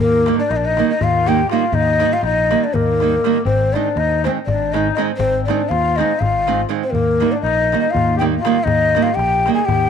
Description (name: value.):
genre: balkan folk, Balkan wedding band.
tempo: 242 BPM (eighths).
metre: 7/8.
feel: straight.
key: Eb major.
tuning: A4 = 440 Hz.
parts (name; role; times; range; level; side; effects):
breathy mellow ney; melody; 0.0-9.9 s; Bb4 to Ab5; -18 LUFS; left 2 dB; none.
warm clarinet; second line; 0.0-9.9 s; Bb3 to Ab4; -24 LUFS; left 13 dB; none.
mellow fretless electric bass; bass; 0.0-9.9 s; Ab1 to Eb2; -21 LUFS; equal; lush chorus.
darbuka; percussion; 0.1-9.9 s; none; -24 LUFS; left 5 dB; none.
nylon-string guitar; accompaniment; 0.3-9.6 s; Eb3 to Eb4; -21 LUFS; right 15 dB; none.
room: light reverb, studio ambience.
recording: 1960s-style stereo with parts hard left and right.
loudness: -14 LUFS.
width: side -7 dB against mid.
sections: 0.0-9.9 A section.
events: none.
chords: 0.0 Eb; 3.5 Ab; 6.9 Eb.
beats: 0.23 0.48 0.73 0.98 1.23 1.48 | 1.72 1.97 2.22 2.46 2.71 2.96 3.21 | 3.46 3.70 3.95 4.20 4.45 4.70 4.94 | 5.19 5.44 5.69 5.94 6.18 6.43 6.68 | 6.93 7.18 7.42 7.67 7.92 8.17 8.42 | 8.66 8.91 9.16 9.41 9.66.